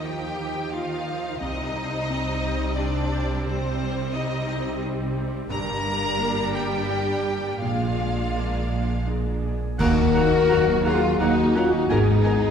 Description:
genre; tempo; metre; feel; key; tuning
cinematic, emotional film score for orchestra; 86 BPM; 3/4; rubato; C minor; A4 = 444 Hz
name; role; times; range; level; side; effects
rich studio violin section; melody; 0.0-12.3 s; C5 to Bb5; -32 LUFS; left 1 dB; none
rich studio violin section; second line; 0.0-12.5 s; C4 to Bb4; -31 LUFS; left 1 dB; none
clear grand piano; accompaniment; 0.0-12.5 s; C2 to Ab4; -28 LUFS; left 2 dB; none
rich studio viola section; accompaniment; 0.0-12.3 s; F3 to Bb4; -33 LUFS; right 2 dB; none
mellow French horn section; sustained chords; 0.0-12.5 s; C4 to Bb4; -27 LUFS; left 4 dB; none
concert harp; arpeggios; 0.0-12.5 s; G2 to Bb5; -33 LUFS; left 3 dB; none
rich studio cello section; bass; 0.0-12.5 s; Eb2 to Eb3; -30 LUFS; right 2 dB; none
rich studio double bass section; bass; 0.0-12.5 s; G1 to Eb2; -29 LUFS; right 3 dB; none
clear oboe; second line; 9.8-12.4 s; Gb5 to Ab5; -32 LUFS; right 1 dB; none
concert flute; second line; 9.8-12.3 s; Bb5; -35 LUFS; right 1 dB; none
mellow clarinet; second line; 9.8-12.4 s; Bb3 to Cb4; -34 LUFS; equal; none
clash cymbals and concert bass drum; percussion; 9.8-11.2 s; none; -33 LUFS; right 1 dB; none
timpani; percussion; 9.8-10.8 s; Eb3; -31 LUFS; left 1 dB; none
room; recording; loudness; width
wet concert hall reverb, RT60 1.8 s; heard from further back in the room; -21 LUFS; side -7 dB against mid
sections
0.0-9.8 A section; 9.8-12.5 B section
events
band accent 9.8-10.5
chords
0.0 Ebadd9; 1.4 Cmadd9; 5.5 Gm; 7.6 Bb7; 9.8 Ebmadd9; 11.9 Abmadd9

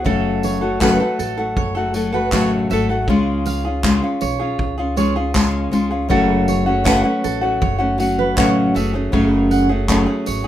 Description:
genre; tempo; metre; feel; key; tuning
acoustic pop; 79 BPM; 4/4; straight; F# minor; A4 = 440 Hz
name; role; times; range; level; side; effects
nylon-string guitar; accompaniment; 0.0-10.5 s; F#2 to A4; -17 LUFS; left 1 dB; none
upright bass; bass; 0.0-10.5 s; F#1 to C#2; -24 LUFS; right 1 dB; none
fingerpicked steel-string acoustic guitar; arpeggios; 0.1-10.5 s; A4 to F#5; -24 LUFS; right 5 dB; none
unplugged drum kit; drums; 0.1-10.4 s; handclaps, kick drum, tambourine; -24 LUFS; equal; none
tambourine; percussion; 0.8-10.1 s; none; -29 LUFS; right 8 dB; none
room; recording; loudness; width
moderate studio reverb, RT60 0.6 s; minimal, uncompressed stereo recording; -15 LUFS; side -12 dB against mid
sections
0.0-10.5 A section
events
none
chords
0.1 F#m; 3.1 C#; 6.1 F#m; 8.8 F#madd9

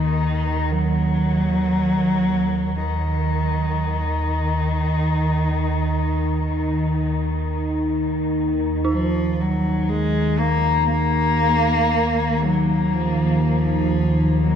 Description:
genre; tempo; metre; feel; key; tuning
dark ambient drone; free time; none; none; Eb minor; A4 = 440 Hz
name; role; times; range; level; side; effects
dark cello; melody; 0.0-14.6 s; Eb3 to Bb3; -22 LUFS; equal; dub echo
analog drone; drone; 0.0-14.6 s; Eb2 to Eb3; -20 LUFS; equal; chorus
flickering grainy texture; texture; 0.0-8.9 s; Bb4; -43 LUFS; right 2 dB; none
dark detuned synth bell; arpeggios; 8.8-14.6 s; Eb4; -30 LUFS; right 4 dB; chorus, tremolo, dub echo
deep dark ambient pad; sustained chords; 13.4-14.6 s; Eb3 to Bb5; -33 LUFS; right 1 dB; none
room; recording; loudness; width
wet plate reverb, RT60 2.9 s; echo-heavy mix, cassette tape; -18 LUFS; side -8 dB against mid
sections
0.0-8.9 A section; 8.9-14.6 B section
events
filter sweep on synth drone 0.0-8.9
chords
0.0 Eb5

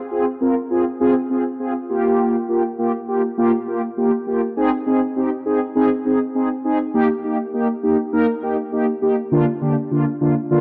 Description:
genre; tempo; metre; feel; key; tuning
pop; 101 BPM; 4/4; straight; unclear; A4 = 440 Hz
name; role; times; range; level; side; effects
mellow synth brass; solo; 0.1-10.6 s; D3 to Bb4; -20 LUFS; equal; chorus, analog delay
room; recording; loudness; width
moderate scoring stage reverb, RT60 1.6 s, digital ambience; dry, gritty hardware recording; -20 LUFS; mono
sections
0.0-4.6 A section; 4.6-10.6 B section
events
none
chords
0.0 Fm; 1.9 Gm7; 4.6 Ab; 6.9 Eb; 9.3 Bb/D

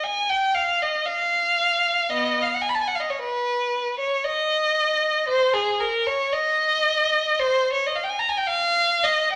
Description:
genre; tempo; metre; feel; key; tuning
classical, free, expressive piece for unaccompanied violin; 52-59 BPM; 3/4; rubato; Eb mixolydian; A4 = 437 Hz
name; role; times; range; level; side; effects
rich violin; solo; 0.0-9.4 s; Cb4 to Cb6; -22 LUFS; equal; none
room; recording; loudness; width
wet stone room reverb, RT60 1.1 s; none; -22 LUFS; mono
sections
0.0-9.4 A section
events
none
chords
none

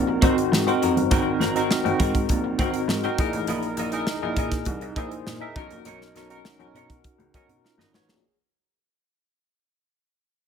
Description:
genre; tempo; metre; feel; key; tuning
polished 1980s jazz-funk pop; 101 BPM; 4/4; straight; unclear; A4 = 437 Hz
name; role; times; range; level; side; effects
barky tine electric piano; accompaniment; 0.0-8.4 s; C4 to Db5; -25 LUFS; left 1 dB; overdrive, medium stereo tremolo, analog chorus
warm baby grand piano; bass; 0.0-8.2 s; G1 to Cb3; -28 LUFS; left 1 dB; none
clean electric guitar; riff; 0.1-8.1 s; C4 to E5; -31 LUFS; right 9 dB; lush chorus
modern studio drum kit; drums; 0.2-8.2 s; hi-hat, kick drum, snare drum; -26 LUFS; equal; none
room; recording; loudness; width
little or no reverb; none; -21 LUFS; side -7 dB against mid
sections
0.0-8.2 A section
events
fade-out 0.0-8.2; drum fill 7.6-8.2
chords
0.0 Ab9; 3.2 C7alt; 5.6 Cbmaj9

